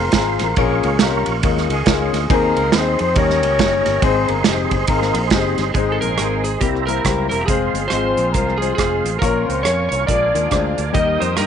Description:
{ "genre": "uptempo gospel", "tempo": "139 BPM", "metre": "4/4", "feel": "swing 61% on 8ths", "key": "Ab major", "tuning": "A4 = 440 Hz", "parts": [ { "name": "mellow horn section", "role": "melody", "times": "0.0-11.5 s", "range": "G3 to Eb5", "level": "-21 LUFS", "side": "left 3 dB", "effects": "none" }, { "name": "tonewheel organ", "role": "sustained chords", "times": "0.0-11.5 s", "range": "G4 to Eb6", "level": "-25 LUFS", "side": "right 13 dB", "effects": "slow rotary speaker, chorus vibrato" }, { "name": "fingered electric bass", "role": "bass", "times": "0.0-11.5 s", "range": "E1 to G2", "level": "-23 LUFS", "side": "equal", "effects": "none" }, { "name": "warm grand piano", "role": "accompaniment", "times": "0.1-11.5 s", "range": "Ab2 to Eb5", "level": "-23 LUFS", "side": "left 14 dB", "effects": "none" }, { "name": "natural country drum kit", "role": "drums", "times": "0.1-11.5 s", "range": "hi-hat, kick drum, ride cymbal, rim click, snare drum", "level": "-20 LUFS", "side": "right 4 dB", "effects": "none" }, { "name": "electric slide guitar", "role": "melody", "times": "5.7-11.5 s", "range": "G4 to Eb5", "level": "-24 LUFS", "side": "right 3 dB", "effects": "none" }, { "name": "warm chamber string section", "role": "sustained chords", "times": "5.7-11.5 s", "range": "F3 to Ab4", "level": "-32 LUFS", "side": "left 1 dB", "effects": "none" } ], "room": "light reverb, small room ambience", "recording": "1960s-style stereo with parts hard left and right, nothing above 10.6 kHz", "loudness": "-15 LUFS", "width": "side -8 dB against mid", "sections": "0.0-5.8 A section; 5.8-11.5 B section", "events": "none", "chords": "0.0 Fm; 0.6 Bbm; 1.4 Eb9sus4; 2.3 Ab; 3.2 Eb7; 4.0 Ab; 6.6 C7; 7.5 Fm; 9.2 Bbm; 10.1 Bb7; 10.9 Eb", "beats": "0.14 | 0.57 1.00 1.43 1.87 | 2.30 2.73 3.16 3.59 | 4.02 4.46 4.89 5.32 | 5.75 6.18 6.62 7.05 | 7.48 7.92 8.35 8.78 | 9.22 9.65 10.08 10.52 | 10.95 11.38" }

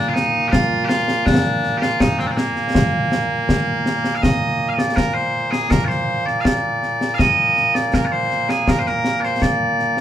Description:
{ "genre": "scottish traditional, Scottish pipe music", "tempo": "81 BPM", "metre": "2/4", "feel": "straight", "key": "Bb major", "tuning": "A4 = 439 Hz", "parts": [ { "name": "loud bright bagpipes", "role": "melody", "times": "0.0-10.0 s", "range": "Bb2 to F5", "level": "-18 LUFS", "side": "right 1 dB", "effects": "none" }, { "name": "concert snare drum and concert bass drum", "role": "drums", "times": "0.2-10.0 s", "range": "none", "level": "-20 LUFS", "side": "left 1 dB", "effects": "none" } ], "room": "wet studio reverb, RT60 0.6 s", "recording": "band playing live in one room", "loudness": "-16 LUFS", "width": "side -11 dB against mid", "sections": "0.0-4.2 A section; 4.2-10.0 B section", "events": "none", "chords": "none", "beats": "0.52 | 1.26 2.00 | 2.75 3.49 | 4.23 4.97 | 5.71 6.45 | 7.19 7.93 | 8.67 9.41" }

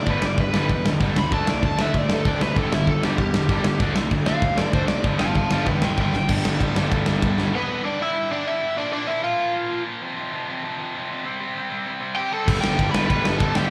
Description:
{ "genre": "punk rock", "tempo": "193 BPM", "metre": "4/4", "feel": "straight", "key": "unclear", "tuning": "A4 = 439 Hz", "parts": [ { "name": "overdriven electric guitar", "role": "melody", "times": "0.0-9.8, 12.2-13.7 s", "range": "B3 to B5", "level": "-27 LUFS", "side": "equal", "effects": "slapback echo" }, { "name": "distorted electric guitar", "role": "riff", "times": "0.0-7.5, 12.5-13.7 s", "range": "G2 to D4", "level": "-30 LUFS", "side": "equal", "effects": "overdrive, slapback echo" }, { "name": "overdriven electric guitar", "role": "riff", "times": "0.0-7.8, 12.5-13.7 s", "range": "G2 to D4", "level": "-34 LUFS", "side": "equal", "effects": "none" }, { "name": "tight distorted guitar", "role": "riff", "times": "0.0-13.7 s", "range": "F2 to D4", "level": "-31 LUFS", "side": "equal", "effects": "distortion, slapback echo" }, { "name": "fuzz picked electric bass", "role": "bass", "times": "0.0-7.5, 12.5-13.7 s", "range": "E1 to C3", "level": "-28 LUFS", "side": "equal", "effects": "overdrive" }, { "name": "big rock drum kit", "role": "drums", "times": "0.1-7.4, 12.5-13.6 s", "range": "crash cymbal, kick drum, ride cymbal, snare drum", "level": "-26 LUFS", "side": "equal", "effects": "none" } ], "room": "studio reverb", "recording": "live gig heard through the venue's PA, club reverb", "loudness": "-22 LUFS", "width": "mono", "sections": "0.0-6.3 A section; 6.3-7.5 B section; 7.5-13.7 C section", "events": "overdriven electric guitar solo 0.0-6.3; drum fill 6.1, 7.4", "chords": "0.1 G; 1.3 D5; 2.6 G5; 3.8 D5; 5.0 G; 6.3 G5; 8.8 Bb; 10.0 F5; 11.2 C5; 12.5 G", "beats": "| 0.07 0.38 0.69 1.00 | 1.31 1.62 1.94 2.25 | 2.56 2.87 3.18 3.49 | 3.80 4.11 4.42 4.73 | 5.04 5.35 5.66 5.97 | 6.28 6.59 6.90 7.21 | 7.52 7.83 8.14 8.45 | 8.76 9.07 9.38 9.69 | 10.00 10.31 10.62 10.93 | 11.24 11.55 11.86 12.16 | 12.47 12.78 13.09 13.40" }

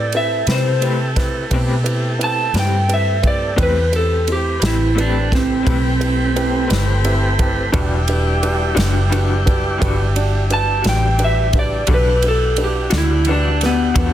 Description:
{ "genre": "slow blues", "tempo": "58 BPM (dotted quarters)", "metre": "12/8", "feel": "straight", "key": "unclear", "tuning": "A4 = 439 Hz", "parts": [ { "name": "electric slide guitar", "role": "melody", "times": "0.0-14.1 s", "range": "B3 to A5", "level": "-19 LUFS", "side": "equal", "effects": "none" }, { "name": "warm concert grand piano", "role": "accompaniment", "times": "0.0-14.1 s", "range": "C4 to A5", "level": "-25 LUFS", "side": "right 2 dB", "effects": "none" }, { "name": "tonewheel organ", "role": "sustained chords", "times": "0.0-14.1 s", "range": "G3 to F#5", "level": "-25 LUFS", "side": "equal", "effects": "slow rotary speaker" }, { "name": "vintage muted fingered electric bass", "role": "bass", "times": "0.0-14.1 s", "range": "E1 to C3", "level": "-19 LUFS", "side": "equal", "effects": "none" }, { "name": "natural country drum kit", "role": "drums", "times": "0.1-14.1 s", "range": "kick drum, ride cymbal, snare drum", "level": "-22 LUFS", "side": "equal", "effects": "none" }, { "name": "electric guitar through a small old amp", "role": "accompaniment", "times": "0.5-14.1 s", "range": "E3 to B4", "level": "-25 LUFS", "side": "left 6 dB", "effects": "tremolo" } ], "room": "light reverb", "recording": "dense, heavily limited modern master", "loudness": "-14 LUFS", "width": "side -11 dB against mid", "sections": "0.0-14.1 A section", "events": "electric slide guitar solo 0.0-14.1; grand piano fill 6.7-7.7", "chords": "0.0 Am9; 7.7 Em9", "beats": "0.47 1.51 2.55 | 3.59 4.62 5.66 6.70 | 7.74 8.78 9.81 10.85 | 11.89 12.93 13.96" }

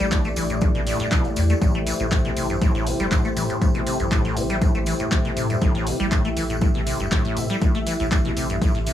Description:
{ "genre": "acid house", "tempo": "120 BPM", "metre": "4/4", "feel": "swing 53% on 16ths", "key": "unclear", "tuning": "A4 = 440 Hz", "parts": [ { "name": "dark analog pad", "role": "sustained chords", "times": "0.0-8.9 s", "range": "A3 to E5", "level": "-27 LUFS", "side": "left 1 dB", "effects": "chorus, sidechain pumping" }, { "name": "deep acid bass", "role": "riff", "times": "0.0-8.9 s", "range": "G2 to A3", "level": "-26 LUFS", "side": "left 1 dB", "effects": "tube saturation, wide subtle chorus, sidechain pumping, analog delay" }, { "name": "warm sub bass", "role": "bass", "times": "0.0-8.9 s", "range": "G1 to A2", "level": "-27 LUFS", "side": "equal", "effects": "tube saturation, sidechain pumping" }, { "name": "punchy analog drum machine", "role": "drums", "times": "0.0-8.9 s", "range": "handclaps, hi-hat", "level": "-30 LUFS", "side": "equal", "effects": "overdrive" }, { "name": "tambourine", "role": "percussion", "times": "0.0-8.9 s", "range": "none", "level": "-38 LUFS", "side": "left 1 dB", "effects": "none" }, { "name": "electronic kick drum", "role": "drums", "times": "0.1-8.7 s", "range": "none", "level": "-22 LUFS", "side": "equal", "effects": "overdrive" } ], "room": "light reverb", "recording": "none", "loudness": "-19 LUFS", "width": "side -11 dB against mid", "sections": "0.0-8.9 A section", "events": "none", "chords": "0.0 Am7", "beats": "0.12 0.62 1.12 | 1.62 2.12 2.62 3.12 | 3.62 4.12 4.62 5.12 | 5.62 6.12 6.62 7.12 | 7.62 8.12 8.62" }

